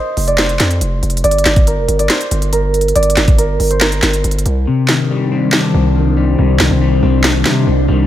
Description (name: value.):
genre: hip hop, trap.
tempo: 140 BPM.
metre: 4/4.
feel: half-time.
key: C minor.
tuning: A4 = 440 Hz.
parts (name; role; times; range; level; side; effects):
concert harp; melody; 0.0-5.9 s; Bb4 to Eb5; -17 LUFS; right 3 dB; low-pass filter.
distorted 808-style bass; bass; 0.2-8.1 s; F1 to C3; -15 LUFS; equal; distortion.
trap drum kit; drums; 0.2-7.6 s; handclaps, hi-hat, kick drum, snare drum; -15 LUFS; equal; none.
electric guitar at the edge of break-up; accompaniment; 4.7-8.1 s; C3 to D4; -14 LUFS; left 4 dB; phaser, low-pass filter.
glassy FM pad; sustained chords; 5.0-8.1 s; Eb3 to C5; -20 LUFS; right 2 dB; ensemble chorus, built-in reverb.
room: digital ambience.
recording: none.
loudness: -11 LUFS.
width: side -12 dB against mid.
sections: 0.0-8.1 A section.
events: hi-hats muted 4.7-8.1; kick muted 4.7-5.5.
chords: 0.0 F5; 1.2 Gm; 4.7 Cmadd9.